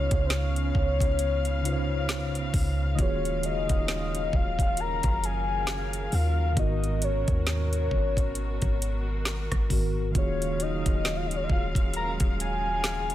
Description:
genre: contemporary R&B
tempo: 67 BPM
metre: 4/4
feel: swing 58% on 16ths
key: Eb minor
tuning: A4 = 440 Hz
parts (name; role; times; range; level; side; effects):
- soft octave-layered synth lead; melody; 0.0-13.1 s; C5 to Bb5; -31 LUFS; left 2 dB; chorus, phaser, digital delay
- mellow tine electric piano; accompaniment; 0.0-13.1 s; Ab2 to Db5; -33 LUFS; equal; medium stereo tremolo
- warm studio string section; sustained chords; 0.0-13.1 s; Cb3 to F5; -36 LUFS; left 1 dB; none
- warm 808-style bass; bass; 0.0-13.1 s; Eb1 to Eb2; -29 LUFS; equal; none
- smooth R&B drum kit; drums; 0.1-13.1 s; hi-hat, kick drum, rim click, snare drum; -27 LUFS; equal; none
room: little or no reverb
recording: none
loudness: -24 LUFS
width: side -13 dB against mid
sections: 0.0-13.1 A section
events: none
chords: 0.0 Db7; 3.0 Ebm11; 6.6 Abm9; 10.2 Ebm11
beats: 0.30 1.20 2.09 | 2.99 3.88 4.78 5.67 | 6.57 7.46 8.36 9.26 | 10.15 11.05 11.94 12.84

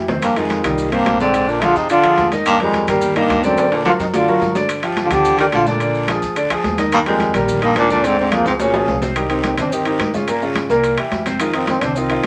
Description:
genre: Afro-Cuban jazz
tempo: 215 BPM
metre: 4/4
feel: straight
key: C minor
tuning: A4 = 440 Hz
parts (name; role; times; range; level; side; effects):
- warm grand piano; accompaniment; 0.0-12.3 s; Bb2 to Eb5; -22 LUFS; equal; none
- upright bass; bass; 0.0-12.3 s; Bb1 to G2; -32 LUFS; equal; none
- congas; percussion; 0.1-12.3 s; none; -30 LUFS; equal; none
- guiro; percussion; 0.1-12.3 s; none; -37 LUFS; equal; none
- timbales; percussion; 0.1-12.3 s; none; -27 LUFS; equal; none
- breathy trombone; melody; 0.2-12.2 s; G3 to G4; -20 LUFS; equal; none
- warm baritone saxophone; second line; 0.2-9.0 s; Eb2 to Eb3; -23 LUFS; equal; none
- maracas; percussion; 0.2-12.3 s; none; -40 LUFS; equal; none
room: moderate studio reverb, RT60 0.5 s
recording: none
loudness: -17 LUFS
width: mono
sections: 0.2-9.2 A section; 9.2-12.3 B section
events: drum fill 0.0, 3.6-4.7, 8.5-9.2; trombone solo 9.2-12.3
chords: 0.2 Fm9; 1.3 Bb7; 2.5 Ebadd9; 3.6 Daug; 4.7 Gm7; 5.8 Bb7; 6.9 Ebmaj9; 8.0 Ddim; 8.6 Db6; 9.2 Cm; 10.3 Gm7b5; 10.8 C7; 11.4 F7(no3)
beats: | 0.22 0.50 0.78 1.06 | 1.34 1.62 1.90 2.18 | 2.46 2.74 3.02 3.30 | 3.58 3.85 4.13 4.41 | 4.69 4.97 5.25 5.53 | 5.81 6.09 6.37 6.65 | 6.92 7.20 7.48 7.76 | 8.04 8.32 8.60 8.88 | 9.16 9.44 9.72 10.00 | 10.28 10.56 10.84 11.12 | 11.40 11.68 11.96 12.24

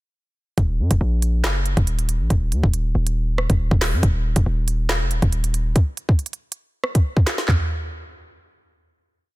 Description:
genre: hip hop, drill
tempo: 139 BPM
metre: 4/4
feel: half-time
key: Eb minor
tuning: A4 = 440 Hz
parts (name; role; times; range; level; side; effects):
- hard-hitting 808-style bass; bass; 0.6-5.7 s; Eb1 to Gb2; -20 LUFS; equal; none
- drill drum kit; drums; 0.6-7.6 s; handclaps, hi-hat, kick drum, rim click, snare drum, toms; -19 LUFS; equal; none
room: digital ambience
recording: dense, heavily limited modern master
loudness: -18 LUFS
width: side -19 dB against mid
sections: 0.6-7.5 hook; 7.5-9.4 final hit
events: none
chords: none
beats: | 0.58 1.01 1.44 1.87 | 2.30 2.73 3.17 3.60 | 4.03 4.46 4.89 5.33 | 5.76 6.19 6.62 7.05 | 7.48

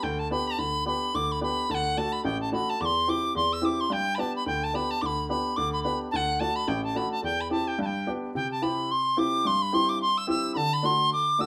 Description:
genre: celtic folk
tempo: 216 BPM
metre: 4/4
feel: swing 57% on 8ths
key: G major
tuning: A4 = 443 Hz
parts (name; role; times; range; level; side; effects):
- bright reedy tin whistle; melody; 0.0-11.5 s; F#5 to E6; -29 LUFS; equal; none
- warm upright piano; accompaniment; 0.0-11.5 s; A1 to G4; -32 LUFS; equal; none
room: wet studio reverb, RT60 0.7 s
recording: band playing live in one room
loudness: -27 LUFS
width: mono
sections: 0.0-8.3 A section; 8.3-11.5 B section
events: none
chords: 0.0 G; 1.7 D; 2.8 C/E; 3.9 G; 6.1 D; 7.2 C/E; 7.8 G; 8.3 C; 10.6 D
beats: 0.03 0.31 | 0.59 0.86 1.14 1.42 | 1.70 1.97 2.25 2.53 | 2.80 3.08 3.36 3.63 | 3.91 4.19 4.46 4.74 | 5.02 5.29 5.57 5.85 | 6.12 6.40 6.68 6.96 | 7.23 7.51 7.79 8.06 | 8.34 8.62 8.90 9.17 | 9.45 9.73 10.01 10.28 | 10.56 10.84 11.11 11.39

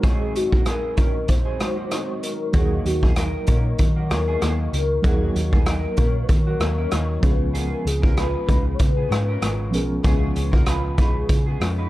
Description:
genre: indie pop, bedroom pop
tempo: 96 BPM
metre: 4/4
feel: swing 55% on 16ths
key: Eb minor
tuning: A4 = 442 Hz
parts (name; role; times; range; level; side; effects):
- warm velvety synth lead; melody; 0.0-11.9 s; Gb4 to Db5; -28 LUFS; left 2 dB; analog chorus
- electric guitar through a small old amp; second line; 0.0-11.9 s; Bb3 to Cb5; -33 LUFS; right 2 dB; analog chorus, tape echo
- flamenco guitar; accompaniment; 0.0-11.9 s; Ab2 to F4; -31 LUFS; left 3 dB; analog chorus, warbly pitch drift
- reed electric piano; accompaniment; 0.0-11.9 s; F3 to C5; -31 LUFS; right 3 dB; fast tremolo
- raw garage drum kit; drums; 0.0-11.8 s; hi-hat, kick drum, rim click; -20 LUFS; equal; none
- hollow-body short-scale picked electric bass; bass; 2.5-11.9 s; Ab1 to Eb3; -24 LUFS; equal; none
room: studio reverb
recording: dark, warm production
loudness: -18 LUFS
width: side -16 dB against mid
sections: 0.0-11.9 A section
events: none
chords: 0.0 Ab7; 2.5 Ebm; 7.2 Db7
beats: | 0.03 0.66 1.28 1.91 | 2.54 3.16 3.79 4.41 | 5.04 5.66 6.29 6.92 | 7.54 8.17 8.79 9.42 | 10.04 10.67 11.29

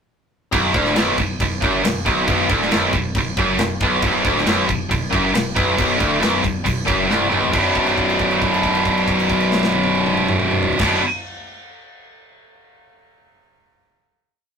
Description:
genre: heavy metal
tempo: 137 BPM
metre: 4/4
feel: straight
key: B minor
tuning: A4 = 443 Hz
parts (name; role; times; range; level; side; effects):
- biting overdriven guitar; riff; 0.5-11.0 s; B1 to D4; -23 LUFS; left 1 dB; none
- heavy high-gain guitar; riff; 0.5-11.0 s; B1 to B2; -18 LUFS; right 2 dB; distortion
- tight distorted guitar; riff; 0.5-11.0 s; B1 to B2; -24 LUFS; left 4 dB; distortion
- rubbery square bass; bass; 0.5-11.0 s; B0 to F#1; -30 LUFS; equal; none
- tight metal drum kit; drums; 0.5-10.9 s; crash cymbal, kick drum, snare drum, toms; -23 LUFS; equal; none
room: light reverb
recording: rough rehearsal-room recording, tube saturation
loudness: -16 LUFS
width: side -6 dB against mid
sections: 0.5-7.5 riff; 7.5-11.1 final chord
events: drum fill 7.1-7.5; held note 7.5-10.8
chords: 0.5 Bm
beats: | 0.53 0.97 1.41 1.84 | 2.28 2.72 3.15 3.59 | 4.03 4.46 4.90 5.34 | 5.78 6.22 6.65 7.09 | 7.53 7.97 8.41 8.85 | 9.29 9.74 10.18 10.62

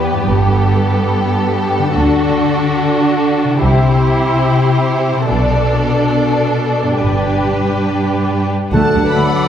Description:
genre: cinematic, heroic adventure film score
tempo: 143 BPM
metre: 4/4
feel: straight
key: D mixolydian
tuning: A4 = 441 Hz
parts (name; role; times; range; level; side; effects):
- warm symphonic violin section; melody; 0.0-9.5 s; A4 to B5; -23 LUFS; left 2 dB; none
- warm symphonic violin section; second line; 0.0-9.5 s; F#4 to F#5; -20 LUFS; left 1 dB; none
- warm symphonic viola section; accompaniment; 0.0-9.5 s; G3 to E4; -20 LUFS; right 1 dB; none
- concert harp; arpeggios; 0.0-9.5 s; G2 to D5; -20 LUFS; left 5 dB; none
- rich symphonic cello section; bass; 0.0-9.2 s; D2 to D3; -17 LUFS; right 1 dB; none
- rich symphonic double bass section; bass; 0.3-9.2 s; G1 to D2; -20 LUFS; right 2 dB; none
- clear oboe; second line; 8.7-9.5 s; E5 to F#5; -22 LUFS; right 1 dB; none
- dark clarinet; second line; 8.7-9.5 s; A4 to B4; -18 LUFS; left 1 dB; none
- large flute ensemble; second line; 8.7-9.5 s; A5 to B5; -20 LUFS; equal; none
- bright trombone section; sustained chords; 8.7-9.5 s; D3 to F#3; -23 LUFS; right 3 dB; none
- mellow French horn section; sustained chords; 8.7-9.5 s; A3 to D4; -25 LUFS; left 3 dB; none
- timpani; percussion; 8.7-9.3 s; D3; -20 LUFS; equal; none
room: wet scoring stage reverb, RT60 1.9 s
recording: heard from further back in the room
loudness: -12 LUFS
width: side -9 dB against mid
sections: 0.0-8.7 A section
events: build-up 0.0-8.7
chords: 0.3 Gadd9; 2.0 D; 3.6 C; 5.3 Bm7; 7.0 G; 8.7 D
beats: | 0.30 0.72 1.14 1.55 | 1.97 2.38 2.79 3.21 | 3.63 4.05 4.47 4.89 | 5.31 5.73 6.14 6.57 | 7.00 7.44 7.87 8.30 | 8.74 9.16

